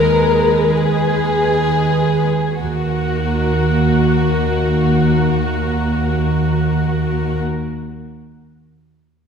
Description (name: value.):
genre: classical, slow romantic movement for string orchestra.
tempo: free time.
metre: none.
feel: none.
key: Eb minor.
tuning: A4 = 440 Hz.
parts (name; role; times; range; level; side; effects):
rich studio violin section; melody; 0.0-7.4 s; Bb4 to Cb5; -25 LUFS; left 3 dB; none.
warm chamber violin section; second line; 0.0-7.4 s; Gb4 to Bb4; -20 LUFS; left 4 dB; none.
warm chamber viola section; accompaniment; 0.0-7.4 s; Ab3 to Ab4; -22 LUFS; right 3 dB; none.
warm studio cello section; bass; 0.0-7.4 s; Eb2; -18 LUFS; right 2 dB; none.
dark chamber double bass section; bass; 2.6-7.4 s; Eb2; -22 LUFS; right 2 dB; none.
room: wet scoring stage reverb, RT60 1.6 s.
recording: heard from further back in the room.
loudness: -14 LUFS.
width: side -6 dB against mid.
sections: 0.0-2.6 A section; 2.6-9.3 B section.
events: slowing down 0.0-2.6.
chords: 0.0 Abm/Eb; 2.6 Ebm.